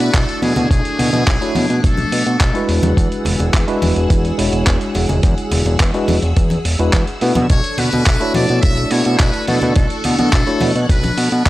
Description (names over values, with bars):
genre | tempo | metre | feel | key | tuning
nu-disco, nu disco | 106 BPM | 4/4 | straight | B dorian | A4 = 439 Hz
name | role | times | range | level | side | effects
muted trumpet section | melody | 0.0-2.6, 7.5-11.5 s | G#4 to E5 | -23 LUFS | left 2 dB | analog delay
tine electric piano | accompaniment | 0.0-10.7 s | G#3 to D5 | -21 LUFS | equal | overdrive, medium stereo tremolo
string machine, full ensemble | sustained chords | 0.0-11.5 s | A3 to F#6 | -25 LUFS | equal | ensemble chorus, sidechain pumping
fat analog bass | bass | 0.0-11.5 s | E1 to B2 | -17 LUFS | equal | none
dusty soul sampler-style drum kit | drums | 0.0-11.5 s | handclaps, hi-hat | -23 LUFS | right 1 dB | small room ambience
electronic kick drum | drums | 0.1-11.5 s | none | -15 LUFS | equal | small room ambience
congas | percussion | 0.4-11.1 s | none | -24 LUFS | left 2 dB | none
room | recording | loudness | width
digital ambience | dry, gritty hardware recording | -13 LUFS | side -16 dB against mid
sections
0.0-11.5 A section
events
none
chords
0.0 Bm11; 2.7 E9; 7.2 Bm11